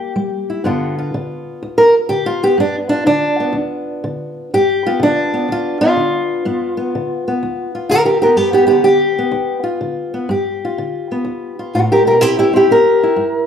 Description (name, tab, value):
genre	acoustic country blues, solo or duo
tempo	124 BPM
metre	4/4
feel	swing 67% on 8ths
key	G mixolydian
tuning	A4 = 440 Hz
part	fingerpicked old ladder-braced acoustic guitar	solo	0.0-13.5 s	D2 to Bb4	-13 LUFS	equal	none
room	moderate large studio reverb, RT60 1.1 s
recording	band playing live in one room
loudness	-13 LUFS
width	side -8 dB against mid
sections	0.0-4.5 A section; 4.5-13.5 B section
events	steel-string acoustic guitar solo 0.0-4.5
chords	0.0 C7 (rootless); 0.6 G7; 12.2 C7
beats	0.16 | 0.65 1.13 1.61 2.10 | 2.58 3.06 3.55 4.03 | 4.51 4.99 5.48 5.96 | 6.44 6.92 7.41 7.89 | 8.37 8.85 9.33 9.81 | 10.29 10.77 11.25 11.73 | 12.21 12.69 13.17